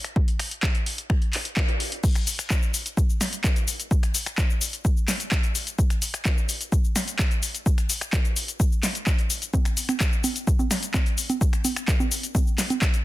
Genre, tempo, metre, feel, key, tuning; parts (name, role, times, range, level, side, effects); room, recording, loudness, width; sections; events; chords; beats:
house; 128 BPM; 4/4; straight
punchy analog drum machine; drums; 0.0-13.0 s; cabasa, congas, crash cymbal, finger snaps, handclaps, hi-hat, snare drum; -26 LUFS; equal
electronic kick drum; drums; 0.2-12.9 s; -22 LUFS; equal; overdrive
digital ambience; dense, heavily limited modern master; -22 LUFS; side -17 dB against mid
0.0-2.0 A section; 2.0-13.0 B section
band accent 1.6; drop 2.0-13.0
| 0.16 0.63 1.10 1.57 | 2.04 2.50 2.97 3.44 | 3.91 4.38 4.85 5.32 | 5.79 6.25 6.72 7.19 | 7.66 8.13 8.60 9.07 | 9.54 10.01 10.47 10.94 | 11.41 11.88 12.35 12.82